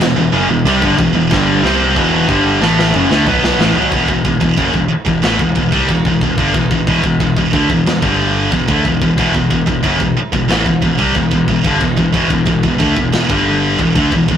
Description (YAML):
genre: heavy metal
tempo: 91 BPM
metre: 4/4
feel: straight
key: E minor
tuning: A4 = 438 Hz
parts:
  - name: heavy high-gain guitar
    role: riff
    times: 0.0-14.4 s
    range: E2 to C4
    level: -17 LUFS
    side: right 4 dB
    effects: distortion
  - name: overdriven electric guitar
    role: riff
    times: 0.0-3.9 s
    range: E2 to C4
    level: -19 LUFS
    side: right 1 dB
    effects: none
  - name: scooped high-gain guitar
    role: riff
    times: 0.0-14.4 s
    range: E2 to C4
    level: -16 LUFS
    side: left 3 dB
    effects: distortion
  - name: modern bright picked electric bass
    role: bass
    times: 0.0-14.4 s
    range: E1 to D2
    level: -18 LUFS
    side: equal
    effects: none
  - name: tight metal drum kit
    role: drums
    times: 0.0-14.4 s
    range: china cymbal, crash cymbal, kick drum, snare drum, toms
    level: -19 LUFS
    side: equal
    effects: none
room: light reverb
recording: rough rehearsal-room recording, tube saturation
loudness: -11 LUFS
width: side -9 dB against mid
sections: 0.0-3.9 A section; 3.9-14.4 B section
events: drum fill 1.3-3.9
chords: 0.0 Em